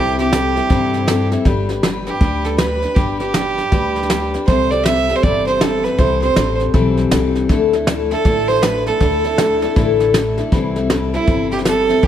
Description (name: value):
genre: honky-tonk and classic country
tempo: 159 BPM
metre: 4/4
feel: swing 63% on 8ths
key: C major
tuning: A4 = 440 Hz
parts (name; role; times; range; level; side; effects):
- clear fiddle; melody; 0.0-12.1 s; E4 to E5; -18 LUFS; right 5 dB; none
- picked steel-string acoustic guitar; accompaniment; 0.0-12.1 s; C3 to B4; -19 LUFS; left 6 dB; none
- upright bass; bass; 0.0-12.1 s; G1 to G2; -22 LUFS; equal; none
- soft brush drum kit; drums; 0.2-12.1 s; hi-hat, kick drum, snare drum; -19 LUFS; equal; none
room: moderate recital hall reverb, RT60 1.7 s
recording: none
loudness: -14 LUFS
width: side -10 dB against mid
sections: 0.0-12.1 A section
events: none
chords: 0.0 C6; 1.5 G; 4.5 C6; 7.5 Dsus2; 10.5 C6